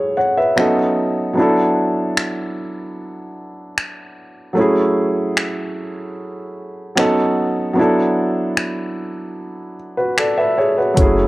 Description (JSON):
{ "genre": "contemporary R&B", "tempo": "75 BPM", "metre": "4/4", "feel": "straight", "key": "unclear", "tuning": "A4 = 440 Hz", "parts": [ { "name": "warm grand piano", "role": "accompaniment", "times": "0.0-11.3 s", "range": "F#3 to F#5", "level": "-17 LUFS", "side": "equal", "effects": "cassette tape" }, { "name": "smooth R&B drum kit", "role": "drums", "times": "0.6-11.2 s", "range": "finger snaps, hi-hat, kick drum", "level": "-20 LUFS", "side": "left 1 dB", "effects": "cassette tape" }, { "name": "soft 808-style bass", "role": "bass", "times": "11.0-11.3 s", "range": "F#1", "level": "-19 LUFS", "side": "equal", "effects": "none" } ], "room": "light reverb, digital ambience", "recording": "home recording on cassette", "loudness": "-15 LUFS", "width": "side -18 dB against mid", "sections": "0.0-11.3 A section", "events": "break 0.0-11.0", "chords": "0.0 F#m7; 0.6 B7; 1.4 E7sus4; 4.6 F#m7; 7.0 B7; 7.8 E7sus4" }